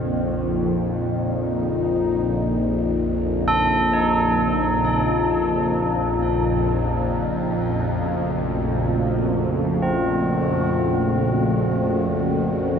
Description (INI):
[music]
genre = dark ambient drone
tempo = free time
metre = none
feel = none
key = Bb harmonic minor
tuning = A4 = 440 Hz
[part]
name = sweeping resonant pad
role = sustained chords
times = 0.0-12.8 s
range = Db3 to Gb4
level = -26 LUFS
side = equal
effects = lush chorus
[part]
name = tubular bells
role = arpeggios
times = 0.0-12.8 s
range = C4 to A4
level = -26 LUFS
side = right 1 dB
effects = ping-pong delay
[part]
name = bowed-like drone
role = drone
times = 0.0-12.8 s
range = Bb1 to F2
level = -21 LUFS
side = left 1 dB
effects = built-in reverb, phaser
[sound]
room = wet huge ambient reverb, RT60 8.9 s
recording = none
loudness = -19 LUFS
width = side -7 dB against mid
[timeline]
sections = 0.0-12.8 A section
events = fade-in on analog synth pad 0.0-12.8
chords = 0.0 Bbm; 6.6 Gbm